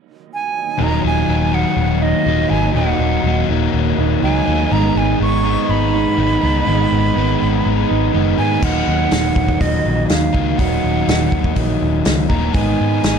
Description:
rock, shoegaze and dream pop; 123 BPM; 4/4; straight; Eb minor; A4 = 440 Hz
bright silver concert flute; melody; 0.3-13.2 s; Eb5 to Db6; -22 LUFS; right 4 dB; analog delay
electric guitar through a small old amp; riff; 0.8-13.2 s; Eb2 to Eb4; -20 LUFS; right 14 dB; reverse reverb
overdriven semi-hollow guitar; riff; 0.8-13.2 s; Eb2 to Eb4; -19 LUFS; left 12 dB; wide subtle chorus
vintage muted picked electric bass; bass; 0.8-13.2 s; Eb1 to Ab2; -19 LUFS; equal
loose indie drum kit; drums; 8.6-13.2 s; crash cymbal, hi-hat, kick drum, snare drum; -20 LUFS; equal
small room ambience; dark, warm production; -14 LUFS; side -6 dB against mid
0.8-8.6 A section; 8.6-13.2 B section
0.0 N.C.; 0.8 Ebm; 4.7 Abm; 8.6 Ebm; 12.5 Abm

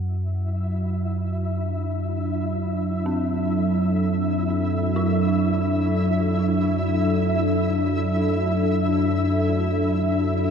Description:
dark ambient drone; free time; A4 = 440 Hz
dark analog pad; sustained chords; 0.5-10.5 s; F#3 to F#5; -24 LUFS; left 2 dB; chorus
deep rumbling drone; drone; 0.0-10.5 s; F#2 to F#3; -24 LUFS; right 1 dB; built-in reverb
flickering grainy texture; texture; 0.3-10.5 s; E4 to E5; -29 LUFS; left 1 dB; built-in reverb
dark detuned synth bell; arpeggios; 3.1-10.5 s; B#3 to E4; -36 LUFS; left 2 dB
wet huge ambient reverb, RT60 8.6 s; -20 LUFS; side -7 dB against mid
0.0-10.5 A section
0.0 Dsus2/F#

